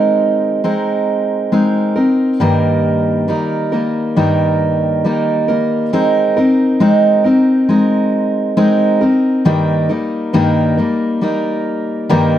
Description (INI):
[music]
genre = pop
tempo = 68 BPM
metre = 4/4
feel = straight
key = Ab major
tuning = A4 = 441 Hz
[part]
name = picked steel-string acoustic guitar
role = solo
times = 0.0-12.4 s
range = G2 to Bb4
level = -12 LUFS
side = equal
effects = none
[sound]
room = light reverb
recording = dry, close 1970s-style studio recording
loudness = -12 LUFS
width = side -11 dB against mid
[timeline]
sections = 0.0-5.9 A section; 5.9-12.4 B section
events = none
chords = 0.0 Abadd9; 2.4 Eb/G; 5.9 Abadd9; 9.5 Eb/G